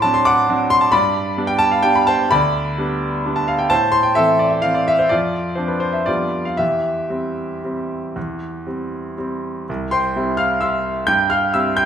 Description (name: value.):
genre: classical, piano waltz.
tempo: 109-139 BPM.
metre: 3/4.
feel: rubato.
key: C major.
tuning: A4 = 438 Hz.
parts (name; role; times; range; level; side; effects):
clear concert grand piano; solo; 0.0-11.9 s; C2 to G6; -16 LUFS; equal; none.
room: wet recital hall reverb, RT60 1.4 s.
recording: minimal, uncompressed stereo recording.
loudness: -16 LUFS.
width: side -8 dB against mid.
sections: 0.0-9.7 A section; 9.7-11.9 B section.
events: none.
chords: 0.0 D7; 0.9 G; 3.7 Am; 5.1 Dm7/F; 6.1 G7/F; 6.6 C/E; 9.7 C.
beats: 0.03 0.49 | 0.94 1.38 1.85 | 2.32 2.78 3.26 | 3.71 4.17 4.64 | 5.11 5.57 6.07 | 6.59 7.09 7.63 | 8.16 8.66 9.18 | 9.69 10.15 10.62 | 11.08 11.55.